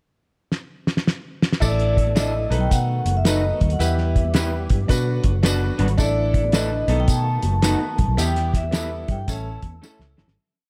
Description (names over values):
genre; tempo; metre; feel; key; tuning
uptempo 1960s-style soul; 110 BPM; 4/4; swing 64% on 8ths; A mixolydian; A4 = 438 Hz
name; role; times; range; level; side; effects
cloth-damped thuddy drum kit; drums; 0.5-10.4 s; crash cymbal, hi-hat, kick drum, snare drum; -23 LUFS; equal; none
vibraphone with medium mallets; melody; 1.6-9.8 s; D5 to A5; -28 LUFS; equal; none
clear grand piano; accompaniment; 1.6-10.2 s; B3 to D5; -31 LUFS; equal; none
percussive tonewheel organ; sustained chords; 1.6-10.4 s; D3 to A4; -37 LUFS; equal; overdrive, chorus vibrato, slow rotary speaker
vintage muted fingered electric bass; bass; 1.6-10.4 s; F#1 to B2; -25 LUFS; equal; none
congas; percussion; 1.6-10.3 s; none; -37 LUFS; equal; none
tambourine; percussion; 1.6-10.0 s; none; -34 LUFS; equal; none
electric guitar through a small old amp; stabs; 2.2-10.3 s; A3 to B4; -31 LUFS; equal; none
room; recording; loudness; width
little or no reverb; none; -21 LUFS; mono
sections
0.0-1.6 pickup bar; 1.6-10.4 A section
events
drum fill 0.5-1.6, 9.8-10.4; fade-out 8.2-10.4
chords
0.0 N.C.; 1.6 Asus4; 2.4 B7; 3.8 Em; 4.9 Bm; 6.0 Asus4; 6.8 B7; 8.2 Em; 9.3 A